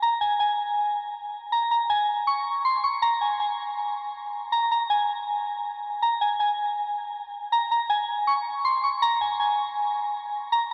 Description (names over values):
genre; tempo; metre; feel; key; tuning
hip hop; 160 BPM; 4/4; half-time; unclear; A4 = 441 Hz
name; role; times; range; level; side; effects
soft synth bell; solo; 0.0-10.7 s; Ab5 to Db6; -25 LUFS; equal; chorus, low-pass filter, digital delay
room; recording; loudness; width
wet huge ambient reverb, RT60 7.5 s; dreamy mix soaked in reverb; -26 LUFS; mono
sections
0.0-10.7 A section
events
none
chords
none